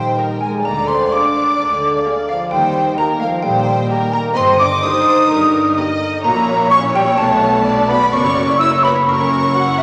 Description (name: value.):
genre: cinematic.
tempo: 128 BPM.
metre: 4/4.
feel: straight.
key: Eb major.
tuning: A4 = 438 Hz.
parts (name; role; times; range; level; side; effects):
warm studio violin section; melody; 0.0-9.8 s; E5 to E6; -29 LUFS; equal; none.
xylophone with soft rubber mallets; melody; 0.0-9.8 s; E5 to E6; -23 LUFS; equal; none.
mellow hollow concert flute; second line; 0.0-9.8 s; E5 to E6; -20 LUFS; equal; none.
rich studio violin section; second line; 0.0-9.8 s; Bb4 to F#5; -25 LUFS; equal; none.
mellow French horn section; sustained chords; 0.0-9.8 s; F3 to E4; -22 LUFS; equal; none.
concert harp; arpeggios; 0.0-9.8 s; F#2 to F6; -28 LUFS; equal; none.
clear studio cello section; bass; 0.0-9.8 s; F#2 to Eb3; -30 LUFS; equal; none.
rich studio double bass section; bass; 0.0-9.8 s; F#1 to Eb2; -28 LUFS; equal; none.
rich studio viola section; accompaniment; 0.2-9.8 s; Bb3 to C#5; -30 LUFS; equal; none.
room: wet scoring stage reverb, RT60 1.9 s.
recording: vinyl crackle.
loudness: -15 LUFS.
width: mono.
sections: 0.0-9.8 A section.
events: none.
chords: 0.0 Eb; 0.6 Bb7/D; 2.5 Eb; 4.4 Eb/G; 6.2 F#7/A#; 7.2 Bm; 8.1 F#7.